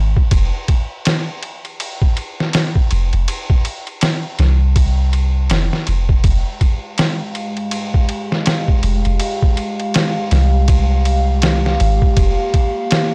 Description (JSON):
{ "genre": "trip hop", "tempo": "81 BPM", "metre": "4/4", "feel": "swing 60% on 16ths", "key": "F minor", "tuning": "A4 = 440 Hz", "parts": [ { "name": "soft 808-style bass", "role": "bass", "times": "0.0-12.4 s", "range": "F1 to C2", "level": "-17 LUFS", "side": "equal", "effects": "none" }, { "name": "trip hop sampler-style drum kit", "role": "drums", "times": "0.2-13.1 s", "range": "kick drum, ride cymbal, snare drum", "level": "-19 LUFS", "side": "equal", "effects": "vintage 12-bit sampler grit" }, { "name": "dark analog pad", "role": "sustained chords", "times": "6.9-13.1 s", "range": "Ab3 to F5", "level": "-24 LUFS", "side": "equal", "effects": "chorus, phaser" } ], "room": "digital ambience", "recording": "dry, gritty hardware recording", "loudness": "-16 LUFS", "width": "mono", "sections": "0.0-13.1 A section", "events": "none", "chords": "0.3 F5; 6.2 Fmadd9; 12.2 Gm7/F", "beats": "| 0.32 1.06 1.80 2.54 | 3.28 4.02 4.76 5.50 | 6.25 6.99 7.73 8.47 | 9.21 9.95 10.69 11.43 | 12.17 12.91" }